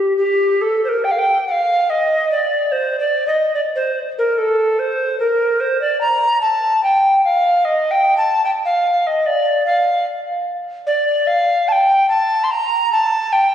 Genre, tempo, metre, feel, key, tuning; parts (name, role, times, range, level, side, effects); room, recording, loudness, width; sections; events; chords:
classical, baroque-style fantasia for unaccompanied recorder; 73 BPM; 3/4; rubato; G minor; A4 = 440 Hz
mellow tenor recorder; solo; 0.0-13.5 s; G4 to C6; -14 LUFS; equal
wet church reverb, RT60 2.9 s; recorded on a phone in the room, studio reverb, compression; -14 LUFS; side -10 dB against mid
0.0-1.0 A section; 1.0-13.5 B section